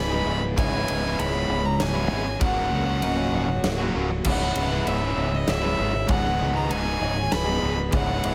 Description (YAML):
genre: post-rock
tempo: 98 BPM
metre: 3/4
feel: straight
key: C# dorian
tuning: A4 = 439 Hz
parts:
  - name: rich violin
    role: melody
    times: 0.0-8.3 s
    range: D#5 to B5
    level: -31 LUFS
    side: equal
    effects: slapback echo
  - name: electric guitar through a small old amp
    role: arpeggios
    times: 0.0-8.3 s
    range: C#2 to G#4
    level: -36 LUFS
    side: equal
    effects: none
  - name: vibraphone with soft mallets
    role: arpeggios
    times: 0.0-8.3 s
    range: A#4 to F#5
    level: -36 LUFS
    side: equal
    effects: slapback echo
  - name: fingered electric bass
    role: bass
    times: 0.0-8.3 s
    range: C#1 to C#2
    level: -30 LUFS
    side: equal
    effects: none
  - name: biting overdriven guitar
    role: riff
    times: 0.1-8.3 s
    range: C#2 to G#4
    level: -32 LUFS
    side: equal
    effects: none
  - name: crunchy overdriven guitar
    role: riff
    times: 0.1-8.3 s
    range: C#2 to G#4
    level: -34 LUFS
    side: equal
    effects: none
  - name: huge arena drum kit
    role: drums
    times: 0.6-8.3 s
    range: crash cymbal, kick drum, ride cymbal, snare drum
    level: -31 LUFS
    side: equal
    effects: none
  - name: rich chamber string section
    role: sustained chords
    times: 4.2-8.3 s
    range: G#4 to C#6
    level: -43 LUFS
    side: equal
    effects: none
room: studio reverb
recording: none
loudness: -24 LUFS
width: mono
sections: 0.0-8.3 A section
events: none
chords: 0.0 G#m/C#; 0.6 C#m7; 2.4 F#/C#; 4.3 C#m7; 6.1 G#m7/C#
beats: | 0.58 1.19 1.80 | 2.42 3.03 3.64 | 4.26 4.87 5.48 | 6.10 6.71 7.32 | 7.94